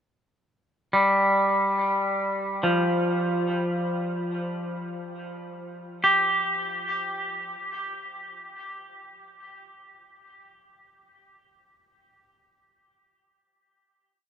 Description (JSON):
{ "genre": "ambient", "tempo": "53 BPM", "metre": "3/4", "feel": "straight", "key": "unclear", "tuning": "A4 = 440 Hz", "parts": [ { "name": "clean electric guitar", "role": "solo", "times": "0.9-10.3 s", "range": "F3 to G4", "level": "-24 LUFS", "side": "equal", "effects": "warbly pitch drift, diffuse ambient delay" } ], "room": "wet huge ambient reverb, RT60 9.2 s", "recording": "none", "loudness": "-23 LUFS", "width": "side -8 dB against mid", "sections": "0.0-6.0 A section; 6.0-9.4 final note", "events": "none", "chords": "none", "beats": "0.38 1.51 | 2.64 3.77 4.91 | 6.04 7.17 8.30" }